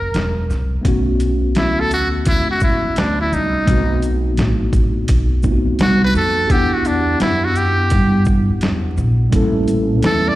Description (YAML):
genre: hip hop, jazz-hop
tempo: 85 BPM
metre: 4/4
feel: swing 64% on 16ths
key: B minor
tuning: A4 = 440 Hz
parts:
  - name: trumpet with metal mute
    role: melody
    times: 0.0-10.4 s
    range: D4 to D5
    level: -18 LUFS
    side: equal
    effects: slapback echo, plate reverb
  - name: upright bass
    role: bass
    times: 0.0-10.4 s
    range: E1 to G2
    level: -18 LUFS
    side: equal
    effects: none
  - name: boom bap sampler-style drum kit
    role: drums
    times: 0.1-10.2 s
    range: hi-hat, kick drum, shaker, snare drum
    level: -19 LUFS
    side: equal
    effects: none
  - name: mellow tine electric piano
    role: accompaniment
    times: 0.8-10.4 s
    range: G3 to F#5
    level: -21 LUFS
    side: equal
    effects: medium stereo tremolo, slapback echo
room: light reverb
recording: live gig heard through the venue's PA, recital hall reverb, vinyl crackle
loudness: -14 LUFS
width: side -16 dB against mid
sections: 0.9-10.4 A section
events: break 0.0-0.9; muted trumpet solo 0.9-10.4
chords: 0.0 F#7; 0.9 Bm7; 3.7 B7b9; 6.5 Em9; 9.3 A7b9